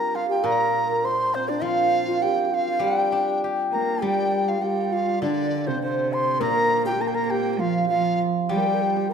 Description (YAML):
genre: chinese traditional, Chinese chamber ensemble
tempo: 101 BPM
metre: 2/4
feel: rubato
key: G yu mode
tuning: A4 = 440 Hz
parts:
  - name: breathy large dizi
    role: melody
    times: 0.0-9.1 s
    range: C5 to C6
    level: -25 LUFS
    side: right 1 dB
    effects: none
  - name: breathy bright low xiao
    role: second line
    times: 0.0-9.1 s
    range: D4 to C5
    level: -27 LUFS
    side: left 4 dB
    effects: none
  - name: hammered dulcimer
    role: second line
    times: 0.0-9.1 s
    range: C4 to C5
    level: -27 LUFS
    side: right 6 dB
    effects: none
  - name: steel-string zither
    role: accompaniment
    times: 0.0-9.1 s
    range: Bb2 to G4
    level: -28 LUFS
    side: left 6 dB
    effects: none
  - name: warm cello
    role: second line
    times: 3.7-9.1 s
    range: C3 to Bb3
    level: -27 LUFS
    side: right 7 dB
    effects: none
room: moderate scoring stage reverb, RT60 2.0 s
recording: minimal, uncompressed stereo recording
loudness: -20 LUFS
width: side -7 dB against mid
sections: 0.0-4.0 A section; 4.0-9.1 B section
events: none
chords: none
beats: | 0.45 1.04 | 1.63 2.22 | 2.82 3.42 | 4.03 4.64 | 5.23 5.83 | 6.42 7.01 | 7.60 8.21 | 8.81